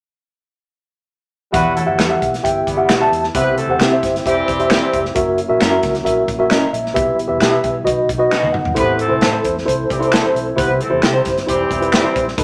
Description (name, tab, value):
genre	uptempo 1960s-style soul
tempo	133 BPM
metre	4/4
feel	straight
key	unclear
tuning	A4 = 439 Hz
part	clear horn section	second line	1.5-5.0, 8.8-12.3 s	E3 to B4	-24 LUFS	equal	none
part	mellow tine electric piano	accompaniment	1.5-12.4 s	A2 to A5	-19 LUFS	equal	none
part	tonewheel organ	sustained chords	1.5-12.4 s	D#3 to G4	-29 LUFS	equal	fast rotary speaker, overdrive
part	vintage muted fingered electric bass	bass	1.5-12.4 s	E1 to C3	-31 LUFS	equal	none
part	natural country drum kit	drums	1.5-12.4 s	hi-hat, kick drum, snare drum, toms	-24 LUFS	equal	none
part	electric guitar through a small old amp	stabs	2.0-12.0 s	G3 to C5	-23 LUFS	equal	none
part	finger snaps	percussion	2.0-12.0 s	none	-26 LUFS	equal	none
room	wet studio reverb, RT60 0.8 s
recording	none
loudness	-16 LUFS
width	mono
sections	1.5-12.4 A section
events	drum fill 8.3-8.8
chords	1.5 Emadd9; 3.4 C; 5.2 F#7; 7.0 Em/B; 7.9 B; 8.8 Am; 10.6 C